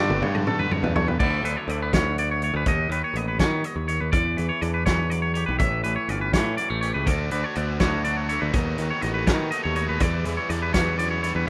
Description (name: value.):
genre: math rock and midwest emo.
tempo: 82 BPM (dotted quarters).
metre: 6/8.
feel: straight.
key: D major.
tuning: A4 = 445 Hz.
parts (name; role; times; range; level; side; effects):
twangy electric guitar; accompaniment; 0.0-11.5 s; D2 to G4; -36 LUFS; equal; lush chorus.
twangy electric guitar; arpeggios; 0.0-11.5 s; A4 to E5; -29 LUFS; equal; tape echo.
cranked stack guitar; riff; 0.0-1.2, 7.1-11.5 s; G2 to F#4; -34 LUFS; equal; overdrive.
modern bright picked electric bass; bass; 0.0-11.5 s; G1 to D#3; -29 LUFS; equal; none.
loose indie drum kit; drums; 0.1-11.3 s; crash cymbal, hi-hat, kick drum, snare drum, toms; -28 LUFS; equal; none.
room: light reverb, studio ambience.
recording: rough home demo mix.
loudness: -24 LUFS.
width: mono.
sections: 0.0-1.2 A section; 1.2-11.5 B section.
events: drum fill 0.0-1.2.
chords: 0.0 Gmaj9; 1.2 D69; 2.7 B7; 4.1 Em9; 5.6 A7; 7.1 D69; 8.5 B7; 10.0 Em9.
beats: 0.47 | 1.20 1.93 | 2.66 3.40 | 4.13 4.87 | 5.60 6.33 | 7.07 7.80 | 8.54 9.27 | 10.01 10.74 | 11.48.